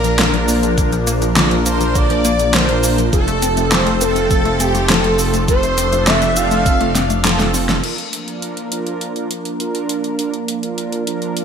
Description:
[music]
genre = synthwave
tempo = 102 BPM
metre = 4/4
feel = straight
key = unclear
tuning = A4 = 440 Hz
[part]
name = expressive portamento lead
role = melody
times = 0.0-7.2 s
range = G4 to F5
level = -20 LUFS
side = equal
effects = wide subtle chorus, ping-pong delay
[part]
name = string machine, violins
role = second line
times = 0.0-7.2 s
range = G4 to F5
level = -25 LUFS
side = equal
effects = ensemble chorus, ping-pong delay
[part]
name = phased analog pad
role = sustained chords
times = 0.0-11.4 s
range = F3 to Bb4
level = -23 LUFS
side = equal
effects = phaser, chorus, sidechain pumping
[part]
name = warbly dusty pluck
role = arpeggios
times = 0.0-7.8 s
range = D3 to C4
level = -24 LUFS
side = left 4 dB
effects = chorus, ping-pong delay
[part]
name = dark detuned saw bass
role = bass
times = 0.0-7.8 s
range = F1 to Bb1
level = -19 LUFS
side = equal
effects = none
[part]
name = pop drum kit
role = drums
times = 0.0-11.4 s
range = cabasa, crash cymbal, handclaps, hi-hat, snare drum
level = -19 LUFS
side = equal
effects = overdrive, gated reverb
[part]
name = mellow synth brass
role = stabs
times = 0.2-11.4 s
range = C4 to Bb4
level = -24 LUFS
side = right 5 dB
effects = chorus, cassette tape, ping-pong delay
[part]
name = electronic kick drum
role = drums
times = 0.8-6.8 s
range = none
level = -17 LUFS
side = equal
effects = overdrive
[sound]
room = moderate lush hall reverb, RT60 2.2 s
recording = bright 1980s-style digital production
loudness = -14 LUFS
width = side -7 dB against mid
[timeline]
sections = 0.0-7.8 A section; 7.8-11.4 B section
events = drum fill 7.0-7.8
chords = 0.0 Bb; 3.1 F; 7.8 Bb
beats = 0.19 | 0.78 1.36 1.95 2.54 | 3.13 3.72 4.31 4.89 | 5.48 6.07 6.66 7.25 | 7.84 8.42 9.01 9.60 | 10.19 10.78 11.37

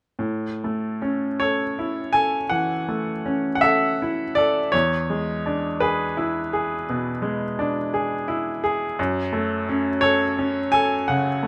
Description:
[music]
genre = classical, romantic nocturne for solo piano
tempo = 51-59 BPM (dotted quarters)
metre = 12/8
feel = rubato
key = A major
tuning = A4 = 440 Hz
[part]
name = bright baby grand piano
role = solo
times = 0.2-11.5 s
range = E2 to G#5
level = -23 LUFS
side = equal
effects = none
[sound]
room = light reverb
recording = close, detailed microphones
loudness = -23 LUFS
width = mono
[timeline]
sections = 0.3-11.5 A section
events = none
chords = 0.3 A; 4.7 E7; 9.0 F#m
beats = | 0.25 1.41 2.51 3.64 | 4.73 5.82 6.88 7.92 | 8.98 10.02 11.06

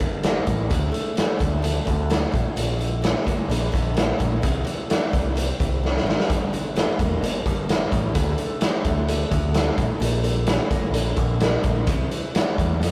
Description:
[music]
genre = quiet-loud alternative rock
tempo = 129 BPM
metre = 4/4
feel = straight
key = G dorian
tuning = A4 = 440 Hz
[part]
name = picked acoustic archtop guitar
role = arpeggios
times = 0.0-12.9 s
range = F2 to D4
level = -34 LUFS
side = equal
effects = none
[part]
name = growling picked electric bass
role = bass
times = 0.0-12.9 s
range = E1 to F2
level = -27 LUFS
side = equal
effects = overdrive
[part]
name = raw garage drum kit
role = drums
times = 0.0-12.9 s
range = hi-hat, kick drum, snare drum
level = -24 LUFS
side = equal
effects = none
[sound]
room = little or no reverb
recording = rough rehearsal-room recording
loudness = -23 LUFS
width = mono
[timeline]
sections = 0.0-12.9 A section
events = drum fill 5.8-6.3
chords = 0.0 Gm; 0.7 D5; 2.3 Bb; 4.4 C; 6.3 Gm; 8.1 D5; 9.8 Bb; 11.9 C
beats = 0.24 | 0.70 1.17 1.63 2.10 | 2.56 3.03 3.50 3.96 | 4.42 4.89 5.35 5.82 | 6.28 6.75 7.21 7.68 | 8.14 8.61 9.08 9.54 | 10.01 10.47 10.94 11.41 | 11.88 12.34 12.81

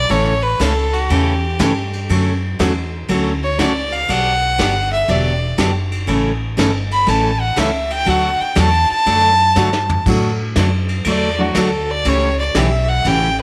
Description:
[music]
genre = country, western swing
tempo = 120 BPM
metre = 4/4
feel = swing 67% on 8ths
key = D major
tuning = A4 = 441 Hz
[part]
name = clear fiddle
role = second line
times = 0.0-13.4 s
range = F#4 to B5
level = -20 LUFS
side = equal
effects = none
[part]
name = upright bass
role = bass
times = 0.0-13.4 s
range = E1 to A2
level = -22 LUFS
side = equal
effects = none
[part]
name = picked steel-string acoustic guitar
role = accompaniment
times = 0.1-13.3 s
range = C#3 to A4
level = -22 LUFS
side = equal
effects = none
[part]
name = vintage brush drum kit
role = drums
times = 0.1-13.2 s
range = crash cymbal, hi-hat, kick drum, ride cymbal, snare drum, toms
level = -26 LUFS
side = equal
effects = none
[part]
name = dark upright piano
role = accompaniment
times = 10.1-11.5 s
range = F#3 to A4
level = -24 LUFS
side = equal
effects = none
[sound]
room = moderate spring reverb, RT60 1.9 s, small room ambience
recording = none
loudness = -16 LUFS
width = mono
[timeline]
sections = 0.0-13.4 A section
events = fiddle solo 0.0-13.4; drum fill 9.6-10.1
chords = 0.1 A; 2.1 Dmaj7; 4.1 Gmaj7; 6.1 A; 8.1 D; 12.1 A7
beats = | 0.10 0.60 1.10 1.60 | 2.09 2.59 3.09 3.59 | 4.09 4.59 5.08 5.58 | 6.08 6.58 7.08 7.58 | 8.07 8.57 9.07 9.57 | 10.06 10.56 11.06 11.56 | 12.05 12.55 13.05

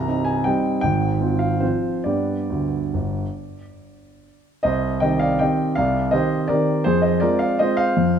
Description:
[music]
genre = classical, piano waltz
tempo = 135-176 BPM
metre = 3/4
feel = rubato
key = C minor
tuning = A4 = 440 Hz
[part]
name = warm concert grand piano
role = solo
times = 0.0-8.2 s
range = C1 to Bb5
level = -18 LUFS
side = right 1 dB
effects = none
[sound]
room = moderate concert hall reverb, RT60 2.2 s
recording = close, detailed microphones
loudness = -18 LUFS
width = side -8 dB against mid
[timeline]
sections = 0.0-4.6 A section; 4.6-8.2 B section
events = none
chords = 0.0 Cm; 0.8 Fm/Ab; 2.1 G; 4.6 Cm; 6.9 Fm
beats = 0.08 0.47 | 0.84 1.20 1.62 | 2.06 2.49 2.93 | 3.36 3.79 4.23 | 4.65 5.02 5.41 | 5.77 6.12 6.49 | 6.86 7.21 7.59 | 7.96

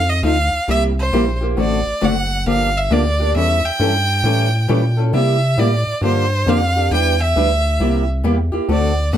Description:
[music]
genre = acoustic string swing (jazz manouche)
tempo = 135 BPM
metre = 4/4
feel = swing 64% on 8ths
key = unclear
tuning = A4 = 444 Hz
[part]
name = clear violin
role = melody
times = 0.0-9.2 s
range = C5 to G5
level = -20 LUFS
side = right 1 dB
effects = plate reverb
[part]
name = rubbery square bass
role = bass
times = 0.0-9.2 s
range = F#1 to C3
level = -18 LUFS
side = equal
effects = none
[part]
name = picked old ladder-braced acoustic guitar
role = accompaniment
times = 0.2-9.2 s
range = C3 to B4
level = -19 LUFS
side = left 1 dB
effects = none
[sound]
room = light reverb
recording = close, detailed microphones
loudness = -14 LUFS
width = side -10 dB against mid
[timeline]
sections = 0.0-9.2 A section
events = none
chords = 0.0 F7; 0.7 C7; 1.6 D7; 2.5 Gm7; 3.4 A7; 5.1 C13; 6.0 Gm7; 6.9 Em7; 7.8 C7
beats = 0.23 0.68 1.12 | 1.57 2.02 2.46 2.91 | 3.35 3.80 4.24 4.69 | 5.13 5.58 6.02 6.47 | 6.91 7.36 7.80 8.25 | 8.69 9.13

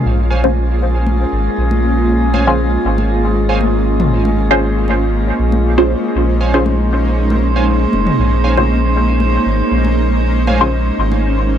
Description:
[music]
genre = dub techno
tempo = 118 BPM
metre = 4/4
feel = swing 53% on 16ths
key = Bb minor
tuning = A4 = 443 Hz
[part]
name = granular cloud pad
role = sustained chords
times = 0.0-11.6 s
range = Ab3 to F4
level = -18 LUFS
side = right 1 dB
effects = built-in reverb
[part]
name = drifting glass-harmonics texture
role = texture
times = 0.0-11.6 s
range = Ab3 to C5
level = -22 LUFS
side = equal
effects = chorus, built-in reverb
[part]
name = soft dub sub bass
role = bass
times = 0.1-11.6 s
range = F1 to Bb1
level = -16 LUFS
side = equal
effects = none
[part]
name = warbly lo-fi synth keys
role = riff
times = 0.3-10.6 s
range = C5 to Ab5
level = -26 LUFS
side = right 4 dB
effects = chorus, dub echo
[part]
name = filtered dub chord stab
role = stabs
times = 0.4-10.8 s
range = Db4 to C5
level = -19 LUFS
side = equal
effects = phaser, dub echo
[part]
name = electronic congas and toms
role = percussion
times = 0.4-11.2 s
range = none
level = -23 LUFS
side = left 1 dB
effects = dub echo
[sound]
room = little or no reverb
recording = dry, gritty hardware recording, transformer saturation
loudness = -12 LUFS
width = side -9 dB against mid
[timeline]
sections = 0.0-11.6 A section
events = none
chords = 0.0 Bbm7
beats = | 0.05 0.56 1.07 1.57 | 2.08 2.59 3.10 3.61 | 4.12 4.63 5.13 5.64 | 6.15 6.66 7.17 7.68 | 8.19 8.69 9.20 9.71 | 10.22 10.73 11.24

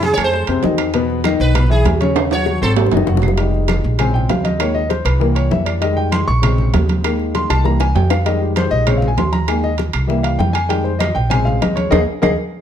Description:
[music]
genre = Afro-Cuban jazz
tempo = 197 BPM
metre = 4/4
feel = straight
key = F minor from 3.4 s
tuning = A4 = 440 Hz
[part]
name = sitar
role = melody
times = 0.0-2.7 s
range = G#4 to C#5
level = -21 LUFS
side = right 2 dB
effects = plate reverb
[part]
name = warm concert grand piano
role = accompaniment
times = 0.0-12.3 s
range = B2 to Db6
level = -19 LUFS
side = left 3 dB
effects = none
[part]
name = upright bass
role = bass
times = 0.0-12.3 s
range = E#1 to F#2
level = -18 LUFS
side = right 1 dB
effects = none
[part]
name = bongos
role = percussion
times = 0.0-12.3 s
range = none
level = -26 LUFS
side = left 8 dB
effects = none
[part]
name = congas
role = percussion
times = 0.0-12.3 s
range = none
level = -23 LUFS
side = equal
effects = none
[part]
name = timbales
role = percussion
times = 0.0-12.3 s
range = none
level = -23 LUFS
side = right 9 dB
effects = none
[part]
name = claves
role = percussion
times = 0.2-12.3 s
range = none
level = -31 LUFS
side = right 6 dB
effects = none
[sound]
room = moderate large studio reverb, RT60 1.1 s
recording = dark, warm production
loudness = -14 LUFS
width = side -9 dB against mid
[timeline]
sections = 0.0-3.4 A section; 3.4-12.6 A section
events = sitar solo 0.0-3.4; drum fill 2.2-3.4, 7.5-8.3, 12.4; grand piano solo 3.4-12.6; band accent 11.9-12.6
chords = 0.3 F7; 0.9 E5; 2.2 G#7; 3.4 Fm7; 4.0 Bbm7; 4.6 Ebsus4; 5.2 C7; 5.8 Fm7; 6.4 Bbm7; 7.0 Ebsus4; 7.7 C7; 8.3 Fm7; 8.9 Bbm7; 9.5 Ebsus4; 10.1 C7; 10.7 Fm7; 11.3 Bbm7; 11.9 Ebsus4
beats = 0.03 0.33 0.64 | 0.94 1.25 1.55 1.86 | 2.16 2.47 2.77 3.08 | 3.38 3.69 3.99 4.30 | 4.60 4.91 5.21 5.52 | 5.82 6.13 6.43 6.74 | 7.04 7.35 7.65 7.96 | 8.26 8.57 8.87 9.18 | 9.48 9.79 10.09 10.40 | 10.70 11.01 11.31 11.62 | 11.92 12.23

